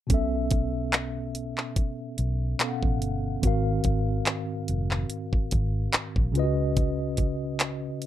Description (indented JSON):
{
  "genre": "contemporary R&B",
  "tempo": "72 BPM",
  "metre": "4/4",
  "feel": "swing 54% on 16ths",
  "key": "unclear",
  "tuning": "A4 = 441 Hz",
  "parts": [
    { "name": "mellow tine electric piano", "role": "accompaniment", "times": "0.1-8.1 s", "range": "G#2 to F#5", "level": "-29 LUFS", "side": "equal", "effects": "fast stereo tremolo" },
    { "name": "vintage muted fingered electric bass", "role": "bass", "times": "0.1-7.9 s", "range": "E#1 to C#2", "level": "-29 LUFS", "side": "equal", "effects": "none" },
    { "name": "trap drum kit", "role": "drums", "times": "0.1-8.1 s", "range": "handclaps, hi-hat, kick drum", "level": "-25 LUFS", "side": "equal", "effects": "none" }
  ],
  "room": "little or no reverb",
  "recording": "none",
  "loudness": "-24 LUFS",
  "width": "side -12 dB against mid",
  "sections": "0.1-8.1 A section",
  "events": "none",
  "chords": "0.1 B9sus4; 3.4 G#13; 6.4 C#9sus4"
}